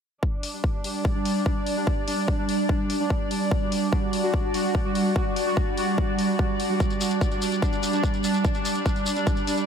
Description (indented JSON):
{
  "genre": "psychedelic trance",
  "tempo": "146 BPM",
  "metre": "4/4",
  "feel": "straight",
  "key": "unclear",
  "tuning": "A4 = 439 Hz",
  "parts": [
    { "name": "pulsing gated texture", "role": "sustained chords", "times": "0.6-9.7 s", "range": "G3 to F#4", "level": "-26 LUFS", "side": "right 1 dB", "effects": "chorus, built-in reverb, sidechain pumping" },
    { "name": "electronic kick drum", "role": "drums", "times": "0.2-9.3 s", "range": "none", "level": "-25 LUFS", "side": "equal", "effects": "none" },
    { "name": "rich studio string section", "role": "texture", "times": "0.2-9.7 s", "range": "G3 to D5", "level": "-29 LUFS", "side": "equal", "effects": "sidechain pumping" },
    { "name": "electronic hi-hat", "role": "drums", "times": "0.4-9.7 s", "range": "none", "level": "-36 LUFS", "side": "left 4 dB", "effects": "none" },
    { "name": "shekere", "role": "percussion", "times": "6.8-9.7 s", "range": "none", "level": "-35 LUFS", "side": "left 2 dB", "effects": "none" }
  ],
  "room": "moderate huge ambient reverb, RT60 7.1 s",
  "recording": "dreamy mix soaked in reverb",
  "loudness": "-22 LUFS",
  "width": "side -7 dB against mid",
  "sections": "0.2-9.7 A section",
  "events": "none",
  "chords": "0.2 G5",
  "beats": "| 0.23 0.64 1.05 1.46 | 1.87 2.28 2.69 3.10 | 3.52 3.92 4.34 4.75 | 5.16 5.57 5.98 6.39 | 6.80 7.21 7.62 8.04 | 8.45 8.86 9.27"
}